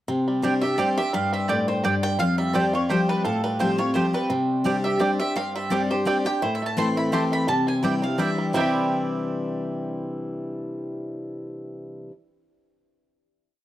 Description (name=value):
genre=bluegrass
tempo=170 BPM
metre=3/4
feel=swing 55% on 8ths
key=C major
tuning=A4 = 440 Hz
part: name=picked steel-string acoustic guitar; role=accompaniment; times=0.1-12.1 s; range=F2 to G4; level=-24 LUFS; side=left 1 dB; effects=none
part: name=bluegrass banjo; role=arpeggios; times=0.1-12.1 s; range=G3 to G4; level=-29 LUFS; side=right 2 dB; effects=none
part: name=mandolin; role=stabs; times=0.4-12.1 s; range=A3 to A5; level=-30 LUFS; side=right 4 dB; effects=none
part: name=mandolin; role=melody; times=0.6-12.1 s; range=A4 to C6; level=-28 LUFS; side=equal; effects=none
room=studio reverb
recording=dry, close 1970s-style studio recording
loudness=-21 LUFS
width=side -13 dB against mid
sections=0.1-8.6 A section; 8.6-10.7 final chord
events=none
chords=0.1 Csus2; 2.2 Fadd9; 4.3 Csus2; 6.4 Am; 7.5 Cadd9